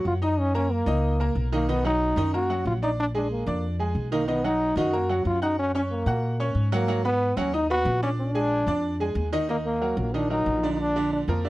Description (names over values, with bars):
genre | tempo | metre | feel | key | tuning
latin, salsa | 184 BPM | 4/4 | straight | unclear | A4 = 440 Hz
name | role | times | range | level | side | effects
warm trombone | melody | 0.0-11.5 s | Bb3 to Gb4 | -26 LUFS | equal | none
bright upright piano | accompaniment | 0.0-11.5 s | D3 to F#6 | -28 LUFS | right 2 dB | none
upright bass | bass | 0.1-11.5 s | A#1 to Bb2 | -27 LUFS | equal | none
room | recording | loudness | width
little or no reverb | dry, close 1970s-style studio recording | -22 LUFS | side -17 dB against mid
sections
0.0-9.5 A section; 9.5-11.5 B section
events
none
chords
0.4 Gb6; 1.7 Bmaj7; 3.0 Bb7; 4.3 Bmaj7; 5.6 Gb; 6.9 Abm7; 8.2 Bb7; 9.5 Ebm; 10.8 Bb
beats
0.06 | 0.38 0.71 1.03 1.36 | 1.68 2.01 2.33 2.66 | 2.98 3.31 3.63 3.96 | 4.28 4.61 4.93 5.26 | 5.58 5.91 6.23 6.56 | 6.88 7.21 7.53 7.86 | 8.18 8.51 8.84 9.16 | 9.49 9.81 10.14 10.46 | 10.79 11.12 11.44